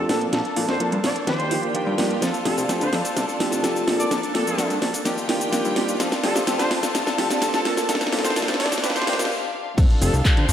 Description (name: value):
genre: filtered disco house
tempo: 127 BPM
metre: 4/4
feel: straight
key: F mixolydian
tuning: A4 = 440 Hz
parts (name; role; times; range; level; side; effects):
- clear horn section; melody; 0.0-10.5 s; A4 to D5; -29 LUFS; equal; sidechain pumping, low-pass filter, analog delay
- warm baby grand piano; accompaniment; 0.0-10.4 s; Eb3 to Bb4; -26 LUFS; equal; phaser, sidechain pumping, low-pass filter
- clear studio violin section; sustained chords; 0.0-10.5 s; Bb3 to A5; -29 LUFS; left 2 dB; vintage 12-bit sampler grit, sidechain pumping, low-pass filter
- direct-recorded clean electric guitar; riff; 0.0-10.5 s; F3 to A4; -29 LUFS; right 1 dB; vintage 12-bit sampler grit, sidechain pumping, low-pass filter
- fat analog bass; bass; 0.0-10.5 s; Eb1 to D3; -27 LUFS; equal; sidechain pumping, high-pass filter, low-pass filter
- house drum kit; drums; 0.1-10.5 s; crash cymbal, handclaps, hi-hat, shaker, snare drum; -25 LUFS; equal; none
- electronic kick drum; drums; 9.8-10.3 s; none; -17 LUFS; equal; none
room: wet lush hall reverb, RT60 2.0 s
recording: dreamy mix soaked in reverb, high-pass filter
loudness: -19 LUFS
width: side -10 dB against mid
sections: 0.0-9.8 A section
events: build-up 0.0-9.8; drum fill 0.0-9.3; filter sweep 0.0-9.8; break 9.3-9.8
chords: 0.1 Bbmaj7; 1.3 Ebmaj9; 2.2 F6; 3.9 Bbmaj7; 5.1 Ebmaj9; 6.0 F6; 7.7 Bbmaj7; 8.8 Ebmaj9; 9.8 F6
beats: | 0.33 0.80 1.27 1.75 | 2.22 2.69 3.16 3.64 | 4.11 4.58 5.05 5.53 | 6.00 6.47 6.94 7.42 | 7.89 8.36 8.83 9.30 | 9.78 10.25